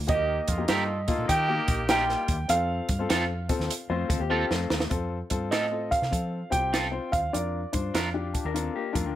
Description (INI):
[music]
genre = uptempo 1960s-style soul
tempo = 99 BPM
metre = 4/4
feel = swing 65% on 8ths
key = F mixolydian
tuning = A4 = 439 Hz
[part]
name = vintage muted fingered electric bass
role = bass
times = 0.0-9.2 s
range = Bb1 to F3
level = -32 LUFS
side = equal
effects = none
[part]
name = dark grand piano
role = melody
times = 0.1-9.2 s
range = D5 to G5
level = -29 LUFS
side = right 2 dB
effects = plate reverb
[part]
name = clear horn section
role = second line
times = 0.1-2.4 s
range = D3 to A4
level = -31 LUFS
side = right 2 dB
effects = plate reverb
[part]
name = warm baby grand piano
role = accompaniment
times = 0.1-9.2 s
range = Bb3 to Bb5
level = -32 LUFS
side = left 5 dB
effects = plate reverb
[part]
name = compact cocktail drum kit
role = drums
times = 0.1-9.1 s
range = hi-hat, kick drum, snare drum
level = -28 LUFS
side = right 1 dB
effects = none
[part]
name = electric guitar at the edge of break-up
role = stabs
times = 0.7-8.1 s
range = C4 to Bb4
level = -29 LUFS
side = right 4 dB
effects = plate reverb
[part]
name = electric guitar through a small old amp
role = riff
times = 3.9-9.2 s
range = F3 to Bb4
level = -33 LUFS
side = left 9 dB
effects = none
[sound]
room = light reverb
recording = none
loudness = -24 LUFS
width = side -12 dB against mid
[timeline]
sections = 0.0-4.9 A section; 4.9-9.2 B section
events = drum fill 4.3-4.9; grand piano fill 7.9-9.2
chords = 0.1 Eb; 2.5 F; 7.3 Bb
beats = | 0.09 0.69 1.29 1.90 | 2.50 3.10 3.70 4.31 | 4.91 5.52 6.12 6.73 | 7.34 7.95 8.55